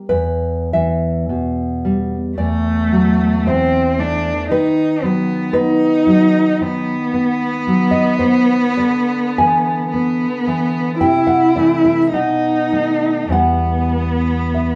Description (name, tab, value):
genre	romantic duo for cello and classical guitar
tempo	45-58 BPM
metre	4/4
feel	rubato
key	E minor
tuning	A4 = 442 Hz
part	nylon-string guitar	accompaniment	0.0-14.8 s	E2 to G#5	-19 LUFS	equal	none
part	warm cello	melody	2.4-14.8 s	A3 to E4	-18 LUFS	equal	none
room	moderate studio reverb, RT60 0.9 s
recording	band playing live in one room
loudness	-16 LUFS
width	mono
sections	0.1-14.8 A section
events	none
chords	0.1 Em; 2.4 F#m7b5/E; 4.5 B/D#; 8.8 E7/D; 11.0 Am/C; 12.1 B7; 13.3 Em